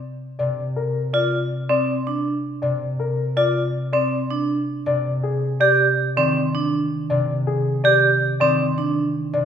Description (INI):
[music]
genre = classical, minimalist pattern music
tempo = 161 BPM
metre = 6/4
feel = straight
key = unclear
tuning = A4 = 440 Hz
[part]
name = concert harp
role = accompaniment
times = 0.0-9.4 s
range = C3 to Eb3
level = -24 LUFS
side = equal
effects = none
[part]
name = warm baby grand piano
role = melody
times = 0.4-9.4 s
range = Ab4 to D5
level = -22 LUFS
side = left 5 dB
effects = none
[part]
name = vibraphone with hard mallets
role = arpeggios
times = 1.1-9.0 s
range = C4 to G4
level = -21 LUFS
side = right 5 dB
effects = none
[sound]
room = wet recital hall reverb, RT60 1.4 s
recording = heard from further back in the room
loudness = -18 LUFS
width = side -8 dB against mid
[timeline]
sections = 0.0-9.4 A section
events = none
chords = 0.0 Csus2; 4.5 Ab (rootless)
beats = | 0.02 0.39 0.77 1.14 1.51 1.88 | 2.25 2.63 3.00 3.37 3.75 4.12 | 4.49 4.86 5.24 5.61 5.98 6.36 | 6.73 7.10 7.47 7.84 8.22 8.59 | 8.96 9.34